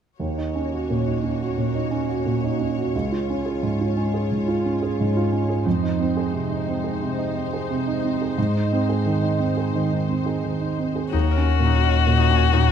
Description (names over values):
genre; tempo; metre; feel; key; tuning
neoclassical piano and strings; 88 BPM; 4/4; rubato; Eb dorian; A4 = 440 Hz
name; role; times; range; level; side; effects
warm grand piano; accompaniment; 0.2-12.7 s; Db2 to Ab4; -22 LUFS; right 3 dB; none
rich studio string section; sustained chords; 0.2-12.7 s; Ab3 to Db5; -30 LUFS; left 6 dB; none
rich violin; melody; 11.1-12.7 s; Gb4; -22 LUFS; left 11 dB; none
concert harp; arpeggios; 11.1-12.7 s; Eb4 to Db5; -29 LUFS; left 9 dB; none
warm sub bass; bass; 11.1-12.7 s; Eb2; -19 LUFS; left 2 dB; none
room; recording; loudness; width
light reverb; minimal, uncompressed stereo recording; -20 LUFS; side -8 dB against mid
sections
0.2-11.1 A section; 11.1-12.7 B section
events
none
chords
0.2 Ebm7; 2.9 Db; 5.7 Fm7; 8.4 Ab; 11.1 Ebm7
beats
| 0.19 0.88 1.57 2.25 | 2.94 3.62 4.30 4.98 | 5.66 6.33 7.01 7.69 | 8.37 9.05 9.74 10.43 | 11.14 11.84 12.53